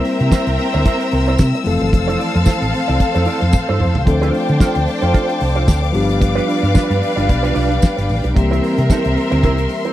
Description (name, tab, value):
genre	disco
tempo	112 BPM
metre	4/4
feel	swing 56% on 16ths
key	unclear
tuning	A4 = 440 Hz
part	warm studio string section	second line	0.0-9.9 s	C4 to G5	-21 LUFS	left 1 dB	slapback echo
part	electric guitar with an envelope filter	accompaniment	0.0-9.9 s	C4 to D5	-23 LUFS	right 6 dB	none
part	tine electric piano	accompaniment	0.0-9.9 s	E3 to Bb4	-22 LUFS	left 3 dB	none
part	clear studio string section	sustained chords	0.0-9.9 s	Bb4 to E6	-26 LUFS	left 2 dB	none
part	damped 70s drum kit	drums	0.0-9.9 s	hi-hat, kick drum, snare drum, toms	-14 LUFS	equal	none
part	hollow-body short-scale fingered electric bass	bass	0.2-9.7 s	F1 to D3	-18 LUFS	equal	none
part	tambourine	percussion	0.3-9.0 s	none	-32 LUFS	right 12 dB	none
room	little or no reverb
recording	dry, close 1970s-style studio recording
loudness	-13 LUFS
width	side -13 dB against mid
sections	0.0-9.9 A section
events	drum fill 3.5-4.1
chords	0.0 C7; 1.7 Fmaj7; 4.1 Dm7; 5.9 G7; 8.4 C7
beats	0.32 0.85 1.39 | 1.93 2.46 3.00 3.54 | 4.07 4.61 5.14 5.68 | 6.22 6.75 7.29 7.82 | 8.36 8.90 9.43